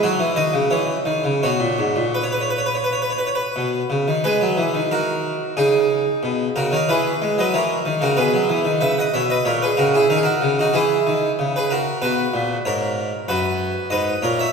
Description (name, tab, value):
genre	classical, baroque-style suite movement for harpsichord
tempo	82-97 BPM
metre	4/4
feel	rubato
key	B major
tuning	A4 = 441 Hz
part	harpsichord	solo	0.0-14.5 s	F#2 to F#5	-17 LUFS	equal	none
room	wet church reverb, RT60 3.0 s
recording	recorded in a church or concert hall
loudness	-17 LUFS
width	side -5 dB against mid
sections	0.0-4.2 A section; 4.2-14.5 A section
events	none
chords	0.0 F#5; 1.4 B5; 4.2 G#m; 9.5 F#/A#; 12.0 B5